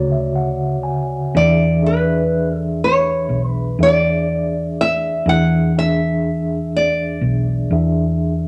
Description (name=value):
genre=acoustic folk-pop ballad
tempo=61 BPM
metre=4/4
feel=straight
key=unclear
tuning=A4 = 439 Hz
part: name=nylon-string guitar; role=melody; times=0.0-8.5 s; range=B4 to F#5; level=-21 LUFS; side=equal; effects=none
part: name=mellow tine electric piano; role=accompaniment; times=0.0-8.5 s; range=D2 to G#5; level=-22 LUFS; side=equal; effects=none
part: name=hollow-body short-scale fingered electric bass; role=bass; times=0.0-8.5 s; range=B1 to E2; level=-22 LUFS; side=equal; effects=none
room=wet studio reverb, RT60 0.7 s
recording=none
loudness=-18 LUFS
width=mono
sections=0.0-8.5 A section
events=none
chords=0.0 Dmaj7; 1.3 E7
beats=0.37 | 1.35 2.33 3.30 4.28 | 5.26 6.24 7.22 8.21